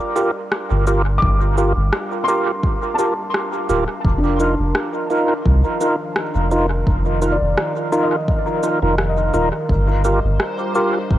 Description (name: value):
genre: ambient dub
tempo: 85 BPM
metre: 4/4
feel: swing 54% on 16ths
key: G minor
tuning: A4 = 440 Hz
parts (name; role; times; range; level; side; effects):
- warbly tape-like pad; sustained chords; 0.0-11.2 s; Eb3 to F5; -29 LUFS; right 1 dB; chorus, built-in reverb, cassette tape
- felt-muted upright piano; arpeggios; 0.0-9.8 s; D4 to D6; -26 LUFS; left 2 dB; cassette tape, tape echo
- tonewheel organ; stabs; 0.2-11.0 s; Eb4 to Bb4; -20 LUFS; right 1 dB; overdrive, chorus vibrato, slow rotary speaker, cassette tape, dub echo
- electronic cabasa and rim click; drums; 0.2-10.9 s; none; -26 LUFS; equal; studio reverb, cassette tape, dub echo
- soft dub sub bass; bass; 0.7-11.2 s; D1 to C2; -18 LUFS; equal; none
- electronic kick drum; drums; 1.2-11.2 s; none; -19 LUFS; equal; studio reverb, cassette tape
- backwards swelling texture; texture; 10.2-11.2 s; C5; -33 LUFS; left 5 dB; built-in reverb, cassette tape
room: light reverb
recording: home recording on cassette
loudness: -16 LUFS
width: side -13 dB against mid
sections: 0.0-11.2 A section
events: fade-in on ambient pad 0.0-11.2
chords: 0.0 Gm7; 4.0 F7sus4; 9.7 Gm7